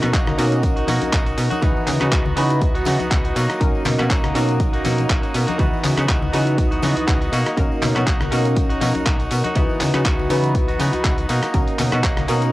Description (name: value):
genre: filtered disco house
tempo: 121 BPM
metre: 4/4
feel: swing 55% on 16ths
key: unclear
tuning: A4 = 440 Hz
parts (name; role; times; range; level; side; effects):
- funky polysynth comp; accompaniment; 0.0-12.5 s; E3 to B4; -24 LUFS; equal; chorus, phaser, sidechain pumping, cassette tape
- string machine, full ensemble; sustained chords; 0.0-12.5 s; F#4 to D#5; -30 LUFS; equal; ensemble chorus, vintage 12-bit sampler grit, sidechain pumping, cassette tape
- direct-recorded clean electric guitar; riff; 0.0-12.5 s; E3 to F#4; -25 LUFS; equal; sidechain pumping, cassette tape
- slap-like FM bass; bass; 0.0-12.5 s; B1 to C#3; -22 LUFS; equal; sidechain pumping
- dusty soul sampler-style drum kit; drums; 0.0-12.5 s; handclaps, hi-hat, rim click; -26 LUFS; equal; sidechain pumping on hats, cassette tape, sidechain pumping on cymbals
- tambourine and congas; percussion; 0.0-12.5 s; none; -30 LUFS; left 5 dB; sidechain pumping on perc
- electronic kick drum; drums; 0.1-12.1 s; none; -20 LUFS; equal; cassette tape
room: light reverb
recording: home recording on cassette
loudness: -16 LUFS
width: side -17 dB against mid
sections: 0.0-12.5 A section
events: none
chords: 0.0 Bmaj7; 1.6 C#m11; 3.4 Bmaj7; 5.6 C#m11; 7.3 Bmaj7; 9.6 C#m11; 11.3 Bmaj7